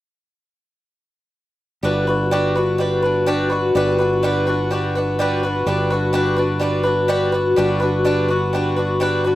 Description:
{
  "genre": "rock",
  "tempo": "126 BPM",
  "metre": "4/4",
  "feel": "straight",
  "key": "G major",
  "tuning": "A4 = 440 Hz",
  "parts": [
    { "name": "picked twelve-string acoustic guitar", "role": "accompaniment", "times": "1.8-9.4 s", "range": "G3 to B4", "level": "-17 LUFS", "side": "left 1 dB", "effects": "slapback echo" },
    { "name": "modern bright fingered electric bass", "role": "bass", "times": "1.8-9.4 s", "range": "G1", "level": "-23 LUFS", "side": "right 1 dB", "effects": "none" }
  ],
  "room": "little or no reverb",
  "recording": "recorded outdoors, with no room sound",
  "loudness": "-16 LUFS",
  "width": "side -15 dB against mid",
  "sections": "1.8-9.4 A section",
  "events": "none",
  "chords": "1.8 Gmaj7",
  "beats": "| 1.83 2.31 2.79 3.27 | 3.75 4.23 4.71 5.19 | 5.67 6.14 6.62 7.10 | 7.57 8.05 8.52 9.00"
}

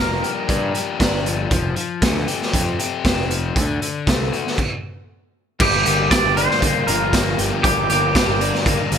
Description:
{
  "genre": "indie rock",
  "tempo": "117 BPM",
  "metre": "4/4",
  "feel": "straight",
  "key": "G minor",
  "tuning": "A4 = 440 Hz",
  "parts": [
    { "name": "twangy electric guitar", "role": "melody", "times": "0.0-1.2, 5.6-8.9 s", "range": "G4 to D5", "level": "-21 LUFS", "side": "right 1 dB", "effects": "wide subtle chorus, digital delay" },
    { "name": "overdriven semi-hollow guitar", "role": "riff", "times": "0.0-9.0 s", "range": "G2 to G4", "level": "-24 LUFS", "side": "left 8 dB", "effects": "none" },
    { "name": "fuzz picked electric bass", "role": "bass", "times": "0.0-9.0 s", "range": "F1 to G2", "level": "-24 LUFS", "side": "equal", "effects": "overdrive" },
    { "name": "raw garage drum kit", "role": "drums", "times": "0.0-9.0 s", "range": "crash cymbal, hi-hat, kick drum, snare drum", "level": "-20 LUFS", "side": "right 1 dB", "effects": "gated reverb" },
    { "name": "string machine, violins", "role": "sustained chords", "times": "5.6-9.0 s", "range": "Bb4 to D6", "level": "-30 LUFS", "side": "right 1 dB", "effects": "ensemble chorus" },
    { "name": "crunchy overdriven guitar", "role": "riff", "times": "5.6-9.0 s", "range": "G2 to G4", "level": "-27 LUFS", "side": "right 6 dB", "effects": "lush chorus" }
  ],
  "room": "light reverb, small room ambience",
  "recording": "bright 1980s-style digital production",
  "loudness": "-16 LUFS",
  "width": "side -8 dB against mid",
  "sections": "0.0-5.6 A section; 5.6-9.0 B section",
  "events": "stop 4.6-5.6",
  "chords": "0.0 Gm7; 1.5 Fadd9; 3.6 D; 5.6 Gm7",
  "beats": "0.49 1.00 | 1.51 2.02 2.53 3.04 | 3.55 4.07 4.58 5.09 | 5.60 6.11 6.62 7.13 | 7.64 8.15 8.66"
}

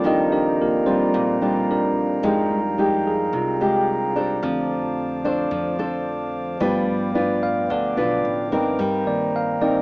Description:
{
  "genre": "bossa nova",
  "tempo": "110 BPM",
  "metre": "4/4",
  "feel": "straight",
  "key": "unclear",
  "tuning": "A4 = 441 Hz",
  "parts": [
    { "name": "nylon-string guitar", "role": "accompaniment", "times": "0.0-9.8 s", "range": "Bb2 to C5", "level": "-22 LUFS", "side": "equal", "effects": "none" },
    { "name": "tine electric piano", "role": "accompaniment", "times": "0.0-9.8 s", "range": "D3 to F5", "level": "-23 LUFS", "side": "equal", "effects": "none" },
    { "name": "glass harmonica", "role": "sustained chords", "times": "0.0-9.8 s", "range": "D4 to D6", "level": "-27 LUFS", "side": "right 1 dB", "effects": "none" },
    { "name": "upright bass", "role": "bass", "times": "0.0-9.8 s", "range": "G1 to G2", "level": "-35 LUFS", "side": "equal", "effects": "none" }
  ],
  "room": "moderate studio reverb, RT60 0.6 s",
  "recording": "small speaker sound",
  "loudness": "-19 LUFS",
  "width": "side -26 dB against mid",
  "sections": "0.0-9.8 A section",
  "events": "tine electric piano solo 0.0-9.8",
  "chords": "0.0 Ebmaj9; 2.2 Fm9; 4.4 F6; 6.6 G7; 8.8 Cm7/G",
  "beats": "| 0.05 0.59 1.14 1.69 | 2.23 2.78 3.33 3.87 | 4.42 4.97 5.51 6.06 | 6.61 7.15 7.70 8.24 | 8.79 9.34"
}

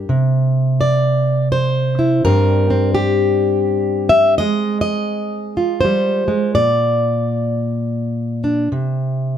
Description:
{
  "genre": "folk, solo fingerstyle acoustic guitar",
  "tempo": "84 BPM",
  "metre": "3/4",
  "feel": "swing 61% on 8ths",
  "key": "unclear",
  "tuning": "A4 = 441 Hz",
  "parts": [
    { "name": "fingerpicked plugged-in steel-string acoustic guitar", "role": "solo", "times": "0.0-9.4 s", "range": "G2 to E5", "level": "-15 LUFS", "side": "equal", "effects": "none" }
  ],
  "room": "light reverb",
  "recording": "none",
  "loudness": "-14 LUFS",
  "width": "side -9 dB against mid",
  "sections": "0.1-9.4 A section",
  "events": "none",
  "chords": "0.1 N.C.; 2.3 Gm; 4.4 Ab6; 6.6 Bb; 8.7 N.C.",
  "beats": "| 0.10 0.81 1.53 | 2.25 2.97 3.69 | 4.40 5.12 5.84 | 6.56 7.28 8.00 | 8.71"
}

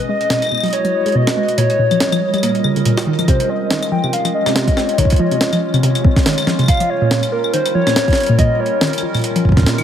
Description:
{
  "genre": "IDM",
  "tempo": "141 BPM",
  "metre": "4/4",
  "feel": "swing 56% on 16ths",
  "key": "Db lydian",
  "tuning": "A4 = 440 Hz",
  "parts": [
    { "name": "warbly tape-like pad", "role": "sustained chords", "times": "0.0-9.8 s", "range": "G3 to Eb5", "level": "-22 LUFS", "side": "right 1 dB", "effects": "chorus, built-in reverb" },
    { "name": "bubbling stepped-filter texture", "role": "texture", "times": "0.0-3.3 s", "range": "Eb5", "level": "-31 LUFS", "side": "right 3 dB", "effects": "chorus, built-in reverb" },
    { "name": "warbly nostalgic lead", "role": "melody", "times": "0.1-9.0 s", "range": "Bb4 to G5", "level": "-19 LUFS", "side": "left 1 dB", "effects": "chorus, tape echo" },
    { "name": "warbly dusty pluck", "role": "arpeggios", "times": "0.1-9.8 s", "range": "Bb2 to C4", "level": "-18 LUFS", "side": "equal", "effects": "chorus, tape echo" },
    { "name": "jungle sampler-style drum kit", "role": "drums", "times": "0.2-9.8 s", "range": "claves, hi-hat, snare drum", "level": "-20 LUFS", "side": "equal", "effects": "tape echo" },
    { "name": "electronic kick drum", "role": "drums", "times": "3.3-9.7 s", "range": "none", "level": "-14 LUFS", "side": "equal", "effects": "none" }
  ],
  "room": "light reverb",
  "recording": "echo-heavy mix",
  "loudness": "-13 LUFS",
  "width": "side -9 dB against mid",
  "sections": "0.0-3.3 A section; 3.3-9.8 B section",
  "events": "kick drops out 1.6-3.3",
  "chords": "0.0 Emaj9; 1.6 Eb9; 3.3 Dbmaj9; 6.7 Eb9",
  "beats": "0.30 0.73 1.15 | 1.58 2.00 2.43 2.85 | 3.28 3.71 4.13 4.56 | 4.98 5.41 5.83 6.26 | 6.68 7.11 7.54 7.96 | 8.39 8.81 9.24 9.66"
}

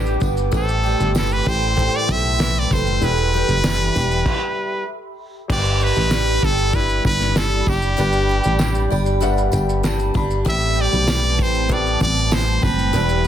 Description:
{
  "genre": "acoustic pop",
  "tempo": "97 BPM",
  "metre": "4/4",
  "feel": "straight",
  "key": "G major",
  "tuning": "A4 = 438 Hz",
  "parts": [
    { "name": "brilliant trumpet", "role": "melody", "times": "0.0-13.3 s", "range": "G4 to E5", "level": "-21 LUFS", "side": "equal", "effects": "none" },
    { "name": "picked steel-string acoustic guitar", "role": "accompaniment", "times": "0.0-13.3 s", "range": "E2 to G4", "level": "-24 LUFS", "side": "right 1 dB", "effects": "double-tracked left and right" },
    { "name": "warm grand piano", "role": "accompaniment", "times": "0.0-13.3 s", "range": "G3 to B5", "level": "-29 LUFS", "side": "left 8 dB", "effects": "none" },
    { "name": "ethereal airy pad", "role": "sustained chords", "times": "0.0-13.3 s", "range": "G3 to D6", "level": "-29 LUFS", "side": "right 3 dB", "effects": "ensemble chorus, built-in reverb" },
    { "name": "solid FM bass", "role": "bass", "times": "0.0-13.3 s", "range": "E1 to B1", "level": "-21 LUFS", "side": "equal", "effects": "none" },
    { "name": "cloth-damped thuddy drum kit", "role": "drums", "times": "0.1-13.3 s", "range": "crash cymbal, kick drum, shaker, snare drum", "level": "-23 LUFS", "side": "equal", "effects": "none" },
    { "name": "tambourine", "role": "percussion", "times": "0.2-13.1 s", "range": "none", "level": "-39 LUFS", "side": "right 8 dB", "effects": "none" }
  ],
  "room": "light reverb",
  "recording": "dense, heavily limited modern master",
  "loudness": "-16 LUFS",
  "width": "side -10 dB against mid",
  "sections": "0.0-5.5 A section; 5.5-13.3 B section",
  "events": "stop 4.3-5.5; grand piano fill 8.6-10.5",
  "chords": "0.0 G; 0.5 Am7; 3.0 Em; 5.5 G; 10.5 Am7",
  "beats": "| 0.52 1.15 1.77 2.39 | 3.01 3.63 4.25 4.88 | 5.50 6.12 6.74 7.36 | 7.98 8.60 9.22 9.84 | 10.46 11.08 11.70 12.32 | 12.94"
}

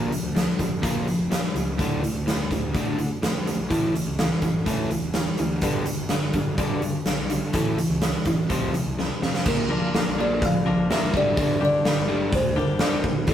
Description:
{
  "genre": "quiet-loud alternative rock",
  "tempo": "125 BPM",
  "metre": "4/4",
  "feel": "straight",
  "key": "D minor",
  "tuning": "A4 = 440 Hz",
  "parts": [
    { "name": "twangy electric guitar", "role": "arpeggios", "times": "0.0-13.1 s", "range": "D2 to Bb4", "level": "-33 LUFS", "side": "left 3 dB", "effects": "none" },
    { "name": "overdriven electric guitar", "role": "riff", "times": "0.0-13.3 s", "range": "D2 to Bb3", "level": "-26 LUFS", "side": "equal", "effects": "none" },
    { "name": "fuzz picked electric bass", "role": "bass", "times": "0.0-13.3 s", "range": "D1 to D3", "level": "-31 LUFS", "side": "equal", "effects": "overdrive" },
    { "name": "big rock drum kit", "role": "drums", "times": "0.1-13.3 s", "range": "crash cymbal, hi-hat, kick drum, snare drum", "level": "-25 LUFS", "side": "right 1 dB", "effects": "none" },
    { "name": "buzzing kalimba", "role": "melody", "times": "9.5-13.3 s", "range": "Bb4 to F5", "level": "-26 LUFS", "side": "left 2 dB", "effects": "none" }
  ],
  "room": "moderate studio reverb, RT60 0.6 s",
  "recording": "rough rehearsal-room recording",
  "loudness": "-21 LUFS",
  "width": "side -10 dB against mid",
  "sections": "0.0-9.5 A section; 9.5-13.3 B section",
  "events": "drum fill 9.0-9.5",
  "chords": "0.0 Bb; 1.8 Dm; 3.7 A; 5.6 G; 7.5 A; 8.5 F5; 9.5 Gm7",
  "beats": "0.35 0.83 1.31 | 1.79 2.27 2.75 3.23 | 3.71 4.19 4.67 5.14 | 5.62 6.10 6.58 7.06 | 7.54 8.02 8.50 8.98 | 9.46 9.94 10.42 10.90 | 11.38 11.86 12.34 12.81 | 13.29"
}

